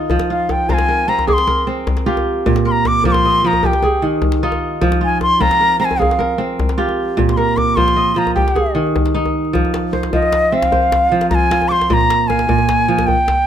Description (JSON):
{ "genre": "west african traditional, West African string and xylophone music", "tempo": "102 BPM (dotted quarters)", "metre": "12/8", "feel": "straight", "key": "F minor", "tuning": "A4 = 441 Hz", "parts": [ { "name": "kora", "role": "arpeggios", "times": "0.0-13.3 s", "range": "Bb2 to F5", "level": "-17 LUFS", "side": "right 3 dB", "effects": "none" }, { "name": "djembe", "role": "percussion", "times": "0.1-13.4 s", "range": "none", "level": "-20 LUFS", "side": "left 2 dB", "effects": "none" }, { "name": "bright reedy bansuri", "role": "melody", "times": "0.3-13.5 s", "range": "Eb5 to D6", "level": "-15 LUFS", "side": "left 1 dB", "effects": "none" } ], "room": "light reverb", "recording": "close, detailed microphones", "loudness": "-13 LUFS", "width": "side -9 dB against mid", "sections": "0.0-9.5 A section; 9.5-13.5 B section", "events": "bansuri solo 0.0-9.5", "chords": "0.1 Fm; 2.5 Bb5; 3.6 Eb; 4.8 Fm; 7.2 Bb5; 8.4 Eb; 9.5 Fm; 11.9 Bb5" }